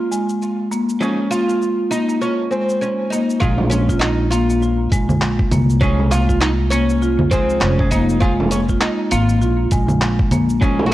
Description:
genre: organic downtempo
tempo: 100 BPM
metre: 4/4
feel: swing 58% on 16ths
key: Bb minor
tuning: A4 = 442 Hz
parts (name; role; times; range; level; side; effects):
- oud; melody; 0.0-10.9 s; C4 to Gb4; -22 LUFS; right 1 dB; digital delay
- marimba with medium hard mallets; arpeggios; 0.0-10.9 s; Ab3 to F4; -20 LUFS; left 1 dB; tape echo
- dusty soul sampler-style drum kit; drums; 0.1-10.9 s; congas, handclaps, hi-hat, shaker; -22 LUFS; right 1 dB; overdrive
- clean electric guitar; accompaniment; 1.0-10.8 s; F3 to Ab4; -28 LUFS; right 1 dB; sidechain pumping
- upright bass; bass; 3.4-10.9 s; F1 to C2; -19 LUFS; equal; sidechain pumping
- electronic kick drum; drums; 3.4-10.8 s; none; -19 LUFS; equal; overdrive
- frame drum; percussion; 3.6-10.9 s; none; -23 LUFS; right 1 dB; none
room: light reverb, small room ambience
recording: worn, warbling old tape, cassette tape, warbly pitch drift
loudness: -15 LUFS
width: side -15 dB against mid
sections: 0.0-3.4 A section; 3.4-10.9 B section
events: none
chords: 0.0 Bb7(no3); 3.4 Bbm11

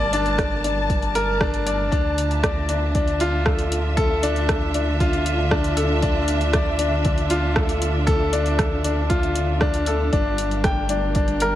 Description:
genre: piano and strings electronica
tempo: 117 BPM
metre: 4/4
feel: straight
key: D minor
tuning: A4 = 440 Hz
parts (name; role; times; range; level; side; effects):
- dark studio string section; sustained chords; 0.0-11.6 s; D3 to A5; -27 LUFS; right 1 dB; shimmer reverb
- warm baby grand piano; riff; 0.0-11.6 s; D4 to G5; -23 LUFS; left 2 dB; digital delay, shimmer reverb
- round analog bass; bass; 0.0-11.6 s; G1 to D2; -25 LUFS; equal; sidechain pumping
- deep house drum kit; drums; 0.1-11.5 s; hi-hat, rim click; -27 LUFS; equal; overdrive
- electronic kick drum; drums; 0.4-11.3 s; none; -23 LUFS; equal; overdrive
room: light reverb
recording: none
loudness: -18 LUFS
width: side -13 dB against mid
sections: 0.0-11.6 A section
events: none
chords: 0.0 Gm; 1.9 Dmadd9; 10.1 Gm

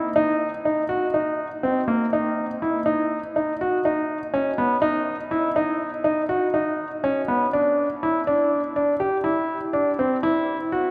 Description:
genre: contemporary instrumental, contemporary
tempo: 244 BPM (eighths)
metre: 11/8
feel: straight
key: unclear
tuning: A4 = 435 Hz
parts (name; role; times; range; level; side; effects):
- clear concert grand piano; solo; 0.0-10.9 s; A#3 to G4; -23 LUFS; equal; none
room: wet cathedral reverb, RT60 5.5 s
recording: in a vast, echoing space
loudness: -23 LUFS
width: mono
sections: 0.0-10.9 A section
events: none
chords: none

